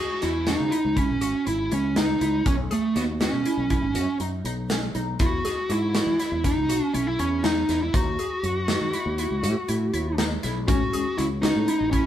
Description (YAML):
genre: progressive instrumental, band music in an uneven meter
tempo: 241 BPM (eighths)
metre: 11/8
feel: straight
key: unclear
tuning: A4 = 440 Hz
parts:
  - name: dark smooth lead guitar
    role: melody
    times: 0.0-12.1 s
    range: A3 to F#4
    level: -25 LUFS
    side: right 1 dB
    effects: overdrive
  - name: glassy wavetable pluck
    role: arpeggios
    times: 0.0-12.1 s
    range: C#4 to G#4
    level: -32 LUFS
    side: right 1 dB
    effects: chorus, phaser
  - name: fretless electric bass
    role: bass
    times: 0.2-12.0 s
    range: G#1 to E3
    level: -28 LUFS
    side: equal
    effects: none
  - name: modern studio drum kit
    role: drums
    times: 0.2-12.0 s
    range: hi-hat, kick drum, snare drum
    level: -27 LUFS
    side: equal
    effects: none
  - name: mellow tine electric piano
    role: accompaniment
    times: 10.7-12.1 s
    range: D#3 to C#4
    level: -30 LUFS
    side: left 4 dB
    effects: medium tremolo
room: moderate studio reverb, RT60 0.9 s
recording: band playing live in one room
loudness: -22 LUFS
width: side -11 dB against mid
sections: 0.0-12.1 A section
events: none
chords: 0.0 Badd9; 5.2 E; 7.9 D#m; 10.7 A